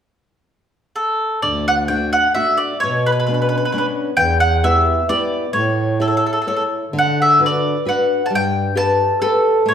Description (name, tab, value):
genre	italian folk, Italian serenade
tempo	131 BPM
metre	3/4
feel	rubato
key	D major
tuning	A4 = 440 Hz
part	mandolin	melody	1.0-9.7 s	A4 to A5	-17 LUFS	equal	none
part	nylon-string guitar	accompaniment	1.4-9.7 s	B2 to C#5	-21 LUFS	left 2 dB	none
part	mellow bass clarinet	bass	1.4-9.7 s	D2 to D3	-21 LUFS	right 1 dB	none
room	wet large studio reverb, RT60 1.2 s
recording	band playing live in one room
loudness	-15 LUFS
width	side -8 dB against mid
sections	0.1-1.4 A section; 1.4-9.7 B section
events	none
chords	0.1 N.C.; 1.4 D; 2.8 Bmadd9; 4.2 Em; 5.5 A; 6.9 D6; 8.3 Gadd9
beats	| 0.05 0.52 0.97 | 1.43 1.89 2.35 | 2.81 3.27 3.72 | 4.17 4.62 5.08 | 5.54 5.99 6.46 | 6.92 7.39 7.84 | 8.30 8.75 9.20 | 9.65